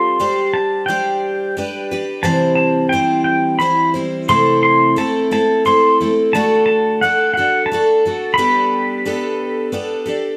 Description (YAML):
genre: acoustic folk duo or small band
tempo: 88 BPM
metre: 3/4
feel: straight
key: unclear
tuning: A4 = 440 Hz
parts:
  - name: pedal steel guitar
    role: melody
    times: 0.0-9.7 s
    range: F#5 to C6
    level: -19 LUFS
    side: equal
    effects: none
  - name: picked twelve-string acoustic guitar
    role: accompaniment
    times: 0.0-10.4 s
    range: C3 to C5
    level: -19 LUFS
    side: equal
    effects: none
room: moderate studio reverb, RT60 0.8 s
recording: close, detailed microphones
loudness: -16 LUFS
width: mono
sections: 0.0-10.4 A section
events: none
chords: 0.2 Gsus4; 1.6 G; 2.2 C; 4.3 Am/C; 6.3 D; 8.4 Gadd9